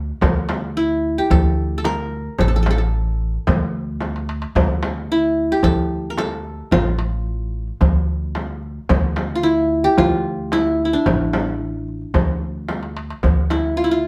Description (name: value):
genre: Arabic maqam ensemble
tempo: 111 BPM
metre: 4/4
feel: straight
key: D minor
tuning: A4 = 440 Hz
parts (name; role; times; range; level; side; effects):
- upright bass; bass; 0.0-14.1 s; A1 to D2; -24 LUFS; equal; none
- darbuka; percussion; 0.2-14.0 s; none; -28 LUFS; equal; none
- frame drum; percussion; 0.2-13.6 s; none; -25 LUFS; equal; none
- qanun; melody; 0.8-14.1 s; D4 to Bb4; -22 LUFS; equal; none
room: moderate studio reverb, RT60 0.6 s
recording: band playing live in one room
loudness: -20 LUFS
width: mono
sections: 0.0-13.2 A section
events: drum fill 4.0-4.6, 12.7-13.2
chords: none